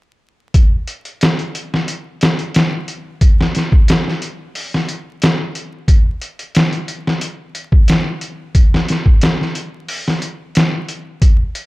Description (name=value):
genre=trip hop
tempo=90 BPM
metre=4/4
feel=straight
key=none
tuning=none
part: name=trip hop sampler-style drum kit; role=drums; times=0.5-11.7 s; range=hi-hat, kick drum, snare drum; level=-13 LUFS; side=equal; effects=none
room=light reverb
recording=dark, warm production, vinyl crackle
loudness=-14 LUFS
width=side -20 dB against mid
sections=0.5-11.2 A section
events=none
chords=none